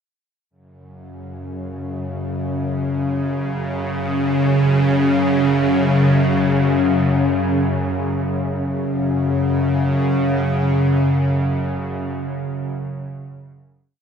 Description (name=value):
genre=ambient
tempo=free time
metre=none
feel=none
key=unclear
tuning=A4 = 440 Hz
part: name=bowed-like drone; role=solo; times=1.4-11.9 s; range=F#2 to C#3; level=-17 LUFS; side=equal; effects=built-in reverb, ping-pong delay
room=wet cathedral reverb, RT60 6.9 s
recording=in a vast, echoing space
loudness=-17 LUFS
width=side -7 dB against mid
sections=0.5-8.2 A section; 8.2-12.1 final chord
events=none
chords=0.5 F#5